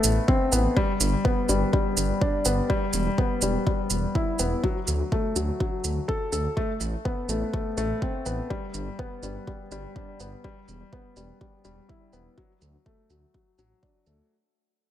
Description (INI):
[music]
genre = piano and strings electronica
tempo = 124 BPM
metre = 4/4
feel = straight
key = unclear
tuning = A4 = 440 Hz
[part]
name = warm upright piano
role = riff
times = 0.0-14.3 s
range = F#3 to A4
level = -27 LUFS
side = left 2 dB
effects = ping-pong delay
[part]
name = dark detuned saw bass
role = bass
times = 0.0-14.2 s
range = E1 to D2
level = -27 LUFS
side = equal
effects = tube saturation, sidechain pumping
[part]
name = shaker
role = drums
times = 0.0-14.2 s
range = none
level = -28 LUFS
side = right 5 dB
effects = overdrive, low-pass filter on perc, low-pass filter on room
[part]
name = electronic kick drum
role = drums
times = 0.3-13.9 s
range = none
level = -27 LUFS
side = equal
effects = overdrive
[sound]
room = light reverb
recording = none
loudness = -23 LUFS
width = side -11 dB against mid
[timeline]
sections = 0.0-14.3 A section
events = fade-out 0.0-14.3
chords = 0.0 Amadd9; 0.8 G; 2.7 Em; 4.6 D; 6.6 Amadd9; 8.5 G; 10.4 Em; 12.4 D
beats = 0.28 | 0.76 1.24 1.73 2.21 | 2.69 3.18 3.66 4.15 | 4.63 5.12 5.60 6.08 | 6.57 7.05 7.53 8.02 | 8.50 8.99 9.47 9.95 | 10.44 10.92 11.40 11.89 | 12.37 12.86 13.34 13.82